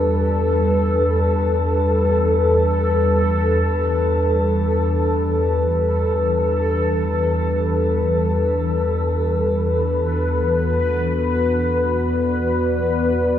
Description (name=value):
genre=dark ambient drone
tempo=free time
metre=none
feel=none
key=unclear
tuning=A4 = 440 Hz
part: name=dark analog pad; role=sustained chords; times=0.0-13.4 s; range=G3 to D5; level=-20 LUFS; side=left 1 dB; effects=chorus, shimmer reverb
part: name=deep rumbling drone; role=drone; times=0.0-13.4 s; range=E2 to E3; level=-21 LUFS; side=left 1 dB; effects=built-in reverb, phaser
part: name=bubbling stepped-filter texture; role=texture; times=0.0-13.4 s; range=A4 to B4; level=-24 LUFS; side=equal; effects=chorus, built-in reverb, shimmer reverb
room=wet huge ambient reverb, RT60 7.9 s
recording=small room reverb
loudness=-17 LUFS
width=side -10 dB against mid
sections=0.0-13.4 A section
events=filter sweep on synth drone 0.0-13.4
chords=0.0 G; 9.6 Bm